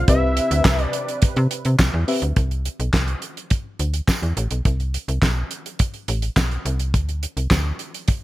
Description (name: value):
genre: early-eighties boogie funk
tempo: 105 BPM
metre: 4/4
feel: straight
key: C major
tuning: A4 = 440 Hz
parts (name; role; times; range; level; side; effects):
- fat analog lead; melody; 0.0-1.2 s; E5; -24 LUFS; left 1 dB; tape echo
- warm analog pad; sustained chords; 0.0-2.3 s; C3 to B4; -32 LUFS; right 2 dB; chorus
- slap-like FM bass; bass; 0.0-7.7 s; A1 to C3; -21 LUFS; equal; none
- mellow FM electric piano; accompaniment; 0.1-2.2 s; C4 to E5; -24 LUFS; left 2 dB; chorus
- damped 70s drum kit; drums; 0.1-8.2 s; handclaps, hi-hat, kick drum, snare drum; -20 LUFS; equal; none
- tambourine; percussion; 0.7-7.6 s; none; -36 LUFS; right 5 dB; none
room: small room reverb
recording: none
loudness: -19 LUFS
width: side -16 dB against mid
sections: 0.0-2.4 A section; 2.4-8.2 B section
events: none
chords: 0.1 Cmaj7; 2.4 Cmaj7(no3); 6.9 N.C.